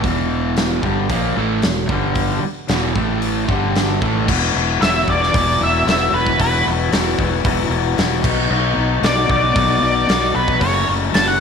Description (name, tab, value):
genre	classic rock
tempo	114 BPM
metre	4/4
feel	straight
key	unclear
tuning	A4 = 440 Hz
part	cranked stack guitar	riff	0.0-11.4 s	E2 to E4	-21 LUFS	left 12 dB	overdrive
part	sludgy distorted guitar	riff	0.0-4.3 s	E2 to A#3	-22 LUFS	right 13 dB	overdrive
part	fuzz fingered electric bass	bass	0.0-11.4 s	E1 to B1	-22 LUFS	right 1 dB	overdrive
part	big rock drum kit	drums	0.0-11.3 s	crash cymbal, hi-hat, kick drum, snare drum	-20 LUFS	equal	none
part	string machine, cellos	sustained chords	4.3-11.4 s	A3 to F#5	-28 LUFS	equal	ensemble chorus
part	octave-fuzz lead guitar	melody	4.8-11.4 s	B4 to A5	-18 LUFS	equal	distortion, tape echo
room	light reverb, small room ambience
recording	1960s-style stereo with parts hard left and right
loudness	-15 LUFS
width	side -6 dB against mid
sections	0.0-4.3 A section; 4.3-11.4 B section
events	lead electric guitar solo 4.3-11.4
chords	0.0 E5; 1.9 G5; 2.4 E5; 3.0 A5; 3.5 G5; 4.0 A5; 4.3 Esus2; 8.2 B; 10.6 F#m